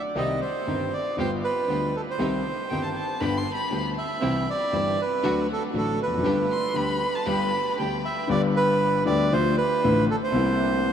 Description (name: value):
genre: tango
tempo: 118 BPM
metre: 4/4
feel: rubato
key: G major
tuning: A4 = 440 Hz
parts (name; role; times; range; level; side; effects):
- bandoneon; melody; 0.0-10.9 s; A4 to E5; -26 LUFS; right 3 dB; none
- warm grand piano; accompaniment; 0.1-10.9 s; G1 to G4; -25 LUFS; left 3 dB; none
- rich chamber string section; stabs; 0.2-8.0 s; A3 to G4; -35 LUFS; right 3 dB; none
- dark violin; second line; 2.7-8.3 s; G5 to C6; -32 LUFS; left 2 dB; none
room: wet huge ambient reverb, RT60 7.3 s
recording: in a vast, echoing space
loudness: -22 LUFS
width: side -8 dB against mid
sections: 0.0-8.3 A section; 8.3-10.9 B section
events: none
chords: 0.2 Cm; 1.2 G7; 2.2 Cm; 3.2 G; 4.2 C; 5.2 D; 6.2 G; 9.3 Dm; 10.3 C7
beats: | 0.15 0.67 1.18 1.69 | 2.19 2.70 3.21 3.71 | 4.22 4.73 5.23 5.74 | 6.25 6.76 7.27 7.79 | 8.30 8.81 9.32 9.83 | 10.34 10.85